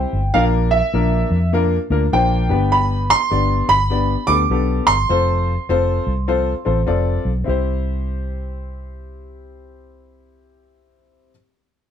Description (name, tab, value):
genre	uptempo 1960s-style soul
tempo	101 BPM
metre	4/4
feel	swing 63% on 8ths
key	C major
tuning	A4 = 440 Hz
part	clear baby grand piano	melody	0.0-6.8 s	E5 to D6	-19 LUFS	right 3 dB	none
part	clear grand piano	accompaniment	0.0-11.3 s	Bb3 to D5	-22 LUFS	left 5 dB	none
part	vintage muted fingered electric bass	bass	0.0-11.3 s	F1 to F2	-20 LUFS	equal	none
room	light reverb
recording	band playing live in one room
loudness	-15 LUFS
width	side -8 dB against mid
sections	0.0-7.5 A section; 7.5-9.8 B section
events	none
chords	0.3 Bb; 2.4 G; 5.1 F; 7.5 C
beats	| 0.34 0.94 1.53 2.12 | 2.72 3.31 3.91 4.50 | 5.09 5.69 6.28 6.88 | 7.47 8.06 8.66 9.25